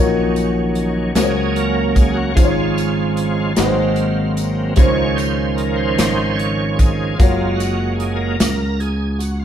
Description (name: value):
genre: slow gospel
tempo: 50 BPM (dotted quarters)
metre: 6/8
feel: straight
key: Db major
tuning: A4 = 440 Hz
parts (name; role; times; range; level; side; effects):
- warm upright piano; accompaniment; 0.0-9.4 s; Ab2 to Db5; -21 LUFS; left 2 dB; none
- bright tonewheel organ; sustained chords; 0.0-9.4 s; Eb3 to Db5; -21 LUFS; right 4 dB; slow rotary speaker, overdrive, chorus vibrato
- fingered electric bass; bass; 0.0-9.4 s; Gb1 to Db2; -21 LUFS; equal; none
- natural country drum kit; drums; 0.4-9.4 s; hi-hat, kick drum, snare drum; -16 LUFS; equal; none
- tambourine; percussion; 0.4-9.4 s; none; -34 LUFS; left 5 dB; none
room: moderate stone room reverb, RT60 1.1 s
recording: band playing live in one room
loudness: -15 LUFS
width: side -9 dB against mid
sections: 0.0-9.4 A section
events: tonewheel organ solo 0.0-9.4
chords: 0.0 Ebm7/Bb; 1.2 Gb/Db; 2.4 Db/Ab; 3.6 Ab7; 4.8 Dbmaj7; 7.2 Gbmaj7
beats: 1.16 | 2.37 3.58 | 4.78 5.99 | 7.20 8.40